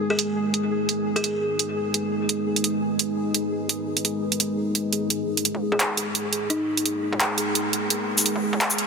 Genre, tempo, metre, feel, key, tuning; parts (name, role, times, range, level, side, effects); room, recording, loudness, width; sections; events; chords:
half-time drum and bass; 171 BPM; 4/4; swing 55% on 16ths, half-time; G# minor; A4 = 440 Hz
deep dark ambient pad; sustained chords; 0.0-8.9 s; G#3 to B4; -26 LUFS; equal; chorus, built-in reverb
pulsing gated texture; texture; 0.0-8.9 s; G#4; -31 LUFS; equal; chorus, built-in reverb
buzzing kalimba; melody; 0.1-1.4, 5.7-6.9 s; D#4 to G#4; -29 LUFS; left 1 dB; vintage 12-bit sampler grit, low-pass filter, dub echo
drum and bass drum kit; drums; 0.2-8.9 s; handclaps, hi-hat, shaker, toms; -22 LUFS; right 2 dB; overdrive, high-pass filter on hats, low-pass filter on hats, high-pass filter on toms, low-pass filter on toms, high-pass filter on snare, low-pass filter on snare, high-pass filter on perc, low-pass filter on perc
moderate huge ambient reverb, RT60 7.3 s; dense, heavily limited modern master, high-pass filter; -22 LUFS; side -5 dB against mid
0.0-5.1 A section; 5.1-8.9 B section
build-up 5.1-8.9; filter sweep on ambient pad 5.1-8.9; filter sweep on kalimba 5.1-8.9
0.0 G#m